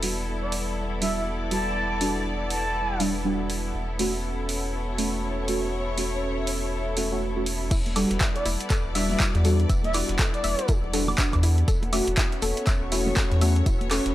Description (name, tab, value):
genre	deep house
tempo	121 BPM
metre	4/4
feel	swing 60% on 16ths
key	E dorian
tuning	A4 = 440 Hz
part	hollow soft pad	sustained chords	0.0-14.1 s	G3 to F#5	-34 LUFS	equal	chorus, sidechain pumping
part	deep mellow chord stab	stabs	0.0-14.1 s	G3 to F#4	-29 LUFS	equal	chorus, sidechain pumping, tape echo
part	round analog bass	bass	0.0-14.1 s	E1 to E2	-28 LUFS	equal	sidechain pumping
part	punchy analog drum machine	drums	0.0-14.1 s	crash cymbal, handclaps, hi-hat, woodblock	-30 LUFS	right 1 dB	overdrive
part	rich symphonic string section	texture	0.0-14.1 s	B3 to D5	-34 LUFS	left 2 dB	sidechain pumping
part	breathy flute-like synth lead	melody	0.4-3.0, 8.4-10.7 s	D5 to A5	-31 LUFS	equal	lush chorus, cassette tape, analog delay
part	soft round pluck	arpeggios	7.7-14.0 s	E4 to E5	-34 LUFS	left 3 dB	chorus, sidechain pumping, analog delay
part	crunchy breakbeat drum kit	drums	7.7-14.1 s	hi-hat, snare drum, tambourine	-41 LUFS	equal	none
part	electronic kick drum	drums	7.7-13.8 s	none	-24 LUFS	equal	none
part	bongos and congas	percussion	7.7-14.0 s	none	-36 LUFS	right 1 dB	none
room	small room ambience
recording	dry, gritty hardware recording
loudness	-22 LUFS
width	side -14 dB against mid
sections	0.0-7.7 A section; 7.7-14.1 B section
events	filter sweep on synth stab 0.0-7.7; drop 7.7-14.1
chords	0.0 Em9; 3.7 F#m/E; 7.7 Em9; 11.7 F#m/E